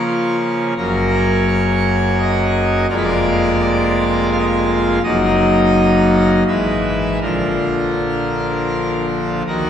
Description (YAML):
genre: classical, chorale-style piece for pipe organ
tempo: 79-86 BPM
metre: 3/4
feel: straight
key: unclear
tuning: A4 = 440 Hz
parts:
  - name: pipe organ, full organ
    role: solo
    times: 0.0-9.7 s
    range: F1 to F5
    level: -14 LUFS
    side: equal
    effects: none
room: wet church reverb, RT60 2.7 s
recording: recorded in a church or concert hall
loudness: -14 LUFS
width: side -9 dB against mid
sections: 0.0-9.5 A section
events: none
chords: 0.0 Bbm/Db; 0.8 Gb; 2.9 Bb7/F; 5.0 Ebm/Gb; 6.5 E/G#; 7.2 Bb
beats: 0.07 | 0.77 1.48 2.19 | 2.90 3.61 4.32 | 5.03 5.75 6.47 | 7.21 7.96 8.72 | 9.47